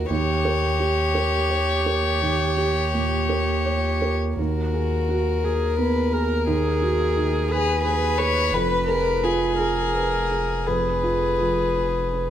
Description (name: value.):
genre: neoclassical piano and strings.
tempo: 57 BPM (dotted quarters).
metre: 6/8.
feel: uneven beats, rubato.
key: unclear.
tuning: A4 = 440 Hz.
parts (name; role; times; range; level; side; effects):
rich violin; melody; 0.0-12.3 s; Ab4 to Db5; -24 LUFS; left 4 dB; none.
felt-muted upright piano; accompaniment; 0.0-12.3 s; Eb2 to Eb5; -26 LUFS; right 4 dB; none.
warm viola; accompaniment; 0.0-12.3 s; Gb4 to Cb5; -27 LUFS; right 2 dB; none.
saturated sub bass; bass; 0.0-12.3 s; F1 to Eb2; -26 LUFS; equal; none.
room: light reverb.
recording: none.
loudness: -20 LUFS.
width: side -10 dB against mid.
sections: 0.0-12.3 A section.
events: none.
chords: 0.1 Eb7; 4.4 Abm7/Eb; 8.5 Fdim.